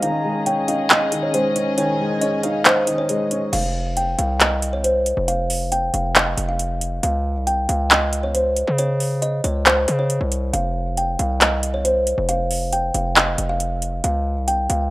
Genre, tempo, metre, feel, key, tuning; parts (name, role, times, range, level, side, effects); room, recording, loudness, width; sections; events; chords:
hip hop, trap; 137 BPM; 4/4; half-time; F minor; A4 = 439 Hz
kalimba; melody; 0.0-14.9 s; C5 to G5; -22 LUFS; equal; low-pass filter
breathy flute-like synth lead; second line; 0.0-3.5 s; Eb5 to Bb5; -30 LUFS; right 1 dB; chorus, digital delay
dark baby grand piano; accompaniment; 0.0-3.6 s; Eb3 to Eb5; -23 LUFS; left 1 dB; low-pass filter
dark chamber string section; sustained chords; 0.0-3.5 s; Db4 to Eb5; -26 LUFS; left 2 dB; low-pass filter
trap drum kit; drums; 0.0-14.8 s; crash cymbal, handclaps, hi-hat; -18 LUFS; equal; overdrive
distorted 808-style bass; bass; 3.5-14.9 s; F1 to Db3; -23 LUFS; equal; distortion
small room ambience; rough home demo mix; -17 LUFS; side -18 dB against mid
0.0-3.5 A section; 3.5-14.9 B section
kick muted 2.7-3.5
0.0 Dbsus2; 3.5 F5; 7.0 Eb7(no3)/C (rootless); 10.5 F5; 14.0 Eb7sus2 (rootless)